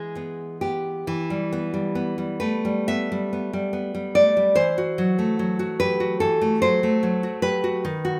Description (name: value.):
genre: romantic piece for solo classical guitar.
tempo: 61-75 BPM.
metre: 4/4.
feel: rubato.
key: E minor.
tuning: A4 = 439 Hz.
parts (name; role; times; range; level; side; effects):
nylon-string guitar; solo; 0.0-8.2 s; D#3 to E5; -23 LUFS; equal; none.
room: moderate recital hall reverb, RT60 1.3 s.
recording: none.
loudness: -23 LUFS.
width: mono.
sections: 0.0-1.1 A section; 1.1-8.2 B section.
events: none.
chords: 0.0 E; 1.1 Em; 4.6 F#m7b5/E.